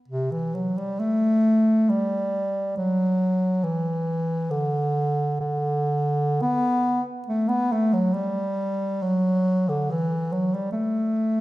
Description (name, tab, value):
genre	classical, free, expressive piece for unaccompanied bass clarinet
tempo	67 BPM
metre	3/4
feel	uneven beats, rubato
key	A dorian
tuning	A4 = 440 Hz
part	mellow bass clarinet	solo	0.1-11.4 s	C3 to B3	-21 LUFS	equal	none
room	wet recital hall reverb, RT60 1.7 s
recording	recorded in a church or concert hall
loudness	-21 LUFS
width	side -17 dB against mid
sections	0.0-11.4 A section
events	none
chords	none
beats	| 0.05 0.97 1.86 | 2.75 3.63 4.51 | 5.41 6.42 7.27 | 8.13 9.00 9.87 | 10.72